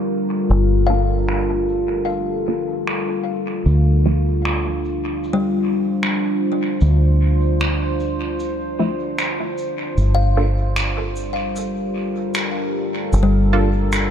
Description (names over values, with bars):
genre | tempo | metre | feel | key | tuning
ambient dub | 76 BPM | 4/4 | straight | G minor | A4 = 440 Hz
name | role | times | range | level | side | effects
deep dark ambient pad | sustained chords | 0.0-14.1 s | G3 to C5 | -22 LUFS | equal | chorus, built-in reverb
kalimba | arpeggios | 0.0-14.1 s | G3 to F5 | -25 LUFS | left 4 dB | low-pass filter, tape echo
deep dub fingered electric bass | bass | 0.0-14.1 s | G1 to D2 | -18 LUFS | equal | none
shaker and finger snaps | drums | 0.5-14.1 s | none | -27 LUFS | right 1 dB | low-pass filter on perc, low-pass filter on snare, low-pass filter on room, dub echo
filtered dub chord stab | stabs | 0.9-13.7 s | F3 to A4 | -25 LUFS | right 2 dB | phaser, cassette tape, dub echo
room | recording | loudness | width
light reverb, small room ambience | echo-heavy mix | -17 LUFS | side -8 dB against mid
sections
0.0-14.1 A section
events
filter sweep on synth stab 0.0-14.1; filter sweep on kalimba 0.0-14.1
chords
0.0 Gm7; 3.7 Dm7; 10.0 Gm7